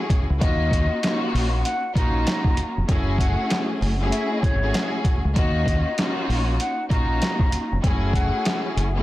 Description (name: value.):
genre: hip hop, boom-bap hip-hop.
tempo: 97 BPM.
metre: 4/4.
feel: swing 63% on 16ths.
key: Eb minor.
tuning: A4 = 441 Hz.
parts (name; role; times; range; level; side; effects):
warm studio string section; accompaniment; 0.0-9.0 s; A3 to Ab4; -26 LUFS; left 1 dB; cassette tape, high-pass filter, low-pass filter.
trip hop sampler-style drum kit; drums; 0.1-8.9 s; handclaps, hi-hat, kick drum, snare drum; -23 LUFS; equal; overdrive.
deep dub fingered electric bass; bass; 0.3-9.0 s; F1 to Eb2; -23 LUFS; equal; none.
mellow concert flute; melody; 0.4-8.6 s; Db5 to Bb5; -29 LUFS; left 1 dB; high-pass filter, low-pass filter, digital delay.
room: little or no reverb.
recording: dense, heavily limited modern master, vinyl crackle.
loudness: -20 LUFS.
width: side -16 dB against mid.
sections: 0.0-9.0 A section.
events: none.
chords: 0.4 Ebm9; 2.9 Gbm9; 5.4 Ebm9; 7.8 Gbm9.